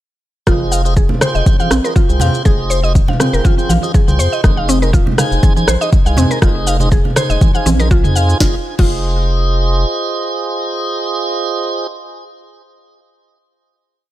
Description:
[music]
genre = afro house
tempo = 121 BPM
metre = 4/4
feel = swing 55% on 16ths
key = F minor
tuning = A4 = 440 Hz
[part]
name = mallet-like synth pluck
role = arpeggios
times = 0.5-8.9 s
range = C4 to F5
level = -20 LUFS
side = equal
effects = chorus, sidechain pumping, digital delay
[part]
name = tonewheel organ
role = stabs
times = 0.5-11.9 s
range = Eb4 to Ab5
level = -20 LUFS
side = right 2 dB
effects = slow rotary speaker, sidechain pumping, digital delay
[part]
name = round analog bass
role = bass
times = 0.5-9.9 s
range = F1 to F2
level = -16 LUFS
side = equal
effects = sidechain pumping
[part]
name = afro-pop drum kit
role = drums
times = 0.5-8.9 s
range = crash cymbal, rim click, shaker, snare drum, toms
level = -20 LUFS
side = left 1 dB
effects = none
[part]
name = electronic kick drum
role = drums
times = 0.5-8.9 s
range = none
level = -12 LUFS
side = equal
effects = none
[part]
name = congas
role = percussion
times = 0.5-7.8 s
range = none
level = -20 LUFS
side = right 2 dB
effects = none
[sound]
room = little or no reverb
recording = none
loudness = -12 LUFS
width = side -14 dB against mid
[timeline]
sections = 0.5-8.4 groove; 8.4-12.4 final chord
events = filter sweep on synth pluck 0.5-8.4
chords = 0.5 Fm7; 4.4 Ab/F; 8.4 Fm7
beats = | 0.47 0.97 1.46 1.96 | 2.46 2.95 3.45 3.94 | 4.44 4.93 5.43 5.93 | 6.42 6.92 7.41 7.91 | 8.40 8.90 9.40 9.89 | 10.39 10.88 11.38

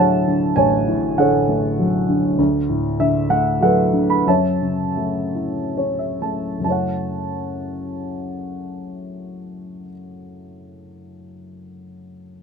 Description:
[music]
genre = classical, lyrical solo piano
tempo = 65-100 BPM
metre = 3/4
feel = rubato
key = F# minor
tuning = A4 = 437 Hz
[part]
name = warm baby grand piano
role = solo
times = 0.0-12.4 s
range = A1 to B5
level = -18 LUFS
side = equal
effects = none
[sound]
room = moderate studio ambience, RT60 0.5 s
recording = none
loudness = -17 LUFS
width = side -6 dB against mid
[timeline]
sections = 0.0-6.6 A section; 6.6-11.9 B section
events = slowing down 2.4-6.6; grand piano fill 5.4-6.6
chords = 0.0 Dmaj7; 2.4 Bm7/D; 4.3 F#m7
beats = | 0.57 1.18 1.78 | 2.39 2.99 3.61 | 4.26 4.97 5.77 | 6.65 7.53 8.40 | 9.26 10.11 10.97

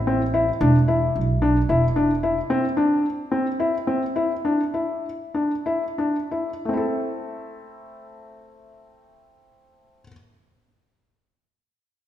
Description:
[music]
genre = contemporary instrumental, chamber music in an uneven meter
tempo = 175-223 BPM (eighths)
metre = 7/8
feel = straight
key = A minor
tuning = A4 = 441 Hz
[part]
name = upright bass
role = bass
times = 0.0-2.4 s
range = E1 to B1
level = -22 LUFS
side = right 2 dB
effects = none
[part]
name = felt-muted upright piano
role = arpeggios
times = 0.1-10.1 s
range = A3 to A4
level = -22 LUFS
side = left 2 dB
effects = none
[sound]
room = wet recital hall reverb, RT60 1.6 s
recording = minimal, uncompressed stereo recording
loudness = -20 LUFS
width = side -11 dB against mid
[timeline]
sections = 0.0-6.6 A section; 6.6-11.4 B section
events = slowing down 2.5-6.6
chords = 0.0 Am; 0.6 E5; 2.5 Cadd9; 4.4 Dsus2; 6.6 Am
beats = 0.07 0.34 | 0.61 0.88 1.15 1.42 1.69 1.96 2.23 | 2.50 2.77 3.05 3.32 3.60 3.88 4.16 | 4.45 4.74 5.04 5.34 5.66 5.98 6.31 | 6.65 6.99 7.33 7.67 8.00 8.34 8.68 | 9.02 9.35 9.69 10.03

